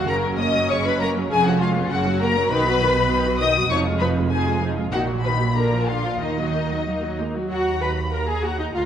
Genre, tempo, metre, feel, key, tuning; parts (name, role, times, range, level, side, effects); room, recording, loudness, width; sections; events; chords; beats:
quick classical-period movement for string orchestra; 91-101 BPM; 2/4; rubato; Eb minor; A4 = 444 Hz
rich studio violin section; melody; 0.0-8.9 s; Eb5 to Eb6; -26 LUFS; left 6 dB
rich symphonic violin section; second line; 0.0-8.8 s; Eb4 to Cb6; -25 LUFS; left 2 dB
rich symphonic viola section; accompaniment; 0.0-8.9 s; Db3 to Cb5; -26 LUFS; right 1 dB
rich symphonic cello section; bass; 0.0-8.9 s; D2 to Ab3; -26 LUFS; right 2 dB
warm studio double bass section; bass; 0.0-8.9 s; F1 to Eb2; -27 LUFS; right 4 dB
wet concert hall reverb, RT60 2.0 s; nothing above 10.8 kHz; -19 LUFS; side -9 dB against mid
0.0-7.5 A section; 7.5-8.9 A section
0.1 Gb; 1.3 Db7/F; 1.9 Gb; 2.5 B; 3.7 Fm7; 4.9 Ebm/Bb; 5.6 Bb; 6.2 Ebm; 7.5 Eb5
| 0.07 0.69 | 1.31 1.91 | 2.51 3.10 | 3.70 4.31 | 4.92 5.55 | 6.21 6.86 | 7.50 8.13 | 8.75